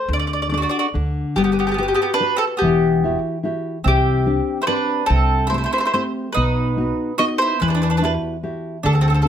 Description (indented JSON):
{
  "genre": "italian folk, Italian serenade",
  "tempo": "144 BPM",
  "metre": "3/4",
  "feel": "straight",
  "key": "unclear",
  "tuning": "A4 = 440 Hz",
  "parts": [
    { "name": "mandolin", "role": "melody", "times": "0.0-9.3 s", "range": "G4 to D#5", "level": "-20 LUFS", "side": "equal", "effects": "slapback echo, plate reverb" },
    { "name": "nylon-string guitar", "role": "accompaniment", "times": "0.0-9.3 s", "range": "B2 to B4", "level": "-22 LUFS", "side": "left 2 dB", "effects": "none" },
    { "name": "upright bass", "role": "bass", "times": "0.1-9.3 s", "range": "E1 to E2", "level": "-21 LUFS", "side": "equal", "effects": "none" },
    { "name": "mandolin", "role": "second line", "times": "0.6-9.3 s", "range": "B3 to F#4", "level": "-25 LUFS", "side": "right 5 dB", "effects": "none" }
  ],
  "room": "light reverb",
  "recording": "none",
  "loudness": "-17 LUFS",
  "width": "side -9 dB against mid",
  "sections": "0.0-9.3 A section",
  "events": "none",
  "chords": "0.1 Dsus4; 0.9 N.C.; 1.4 Gmaj7; 2.6 Emadd9; 3.9 Csus2; 5.1 Am7/C; 6.4 B; 7.6 Emadd9"
}